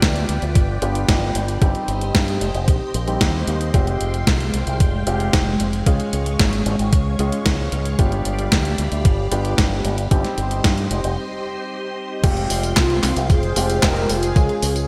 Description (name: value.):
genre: italo disco.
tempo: 113 BPM.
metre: 4/4.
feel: straight.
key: F minor.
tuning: A4 = 440 Hz.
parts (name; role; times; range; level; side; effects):
string machine, full ensemble; sustained chords; 0.0-14.9 s; Ab3 to Db6; -29 LUFS; equal; ensemble chorus.
warm concert grand piano; stabs; 0.0-14.9 s; G3 to Ab4; -29 LUFS; equal; delay.
fingered electric bass with an envelope filter; bass; 0.0-14.8 s; F1 to G2; -25 LUFS; equal; none.
clean 12-bit digital drum machine; drums; 0.0-14.9 s; crash cymbal, handclaps, hi-hat, snare drum, tambourine; -25 LUFS; equal; gated reverb.
electronic kick drum; drums; 0.0-14.5 s; none; -20 LUFS; equal; none.
mellow synth brass; melody; 12.8-14.9 s; C4 to C5; -25 LUFS; equal; chorus, cassette tape, delay.
room: light reverb, digital ambience.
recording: bright 1980s-style digital production.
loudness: -19 LUFS.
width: mono.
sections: 0.0-12.2 A section; 12.2-14.9 B section.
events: break 11.2-12.2.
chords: 0.0 G7; 1.6 Cm; 3.7 Fmadd9; 5.9 Db; 8.0 G7; 10.1 Cm; 12.2 Fmadd9; 14.4 Db.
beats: 0.02 0.55 1.08 | 1.62 2.15 2.68 3.21 | 3.74 4.27 4.80 5.33 | 5.86 6.39 6.93 7.46 | 7.99 8.52 9.05 9.58 | 10.11 10.64 11.17 11.71 | 12.24 12.77 13.30 13.83 | 14.36.